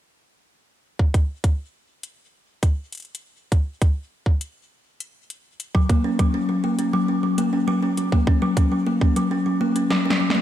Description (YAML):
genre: IDM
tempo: 101 BPM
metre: 4/4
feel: straight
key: unclear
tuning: A4 = 440 Hz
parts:
  - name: electronic kick drum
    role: drums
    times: 1.0-9.1 s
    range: none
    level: -18 LUFS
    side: equal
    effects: overdrive
  - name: electro analog drum machine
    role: drums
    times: 1.1-10.4 s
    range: hi-hat, snare drum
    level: -25 LUFS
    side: left 1 dB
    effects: diffuse ambient delay
  - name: kalimba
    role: arpeggios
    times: 5.7-10.4 s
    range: F#3 to C#4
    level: -20 LUFS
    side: left 1 dB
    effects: ping-pong delay
room: moderate lush hall reverb, RT60 2.9 s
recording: dreamy mix soaked in reverb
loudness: -19 LUFS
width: side -11 dB against mid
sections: 1.0-10.4 A section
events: drum fill 9.9-10.4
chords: none